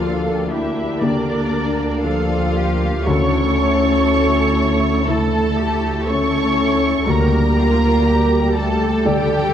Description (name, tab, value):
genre	cinematic, emotional film score for orchestra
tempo	60 BPM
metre	4/4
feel	rubato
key	unclear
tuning	A4 = 440 Hz
part	muted studio violin section	melody	0.0-9.5 s	D5 to C#6	-25 LUFS	right 1 dB	none
part	muted studio violin section	second line	0.0-9.5 s	D4 to C#5	-26 LUFS	equal	none
part	dark grand piano	accompaniment	0.0-9.5 s	D2 to D5	-24 LUFS	equal	none
part	muted studio viola section	accompaniment	0.0-9.5 s	G3 to G4	-26 LUFS	right 1 dB	none
part	mellow French horn section	sustained chords	0.0-9.5 s	D3 to E4	-20 LUFS	left 2 dB	none
part	concert harp	arpeggios	0.0-9.5 s	D3 to A5	-27 LUFS	left 7 dB	none
part	muted chamber double bass section	bass	0.0-9.5 s	D2	-23 LUFS	right 2 dB	none
part	muted studio cello section	bass	0.0-9.5 s	F4 to Bb4	-26 LUFS	right 3 dB	none
room	moderate recital hall reverb, RT60 1.5 s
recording	dark, warm production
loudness	-15 LUFS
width	side -9 dB against mid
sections	0.0-9.5 A section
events	none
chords	0.0 Bb6/D; 3.1 A/D; 7.1 Gm/D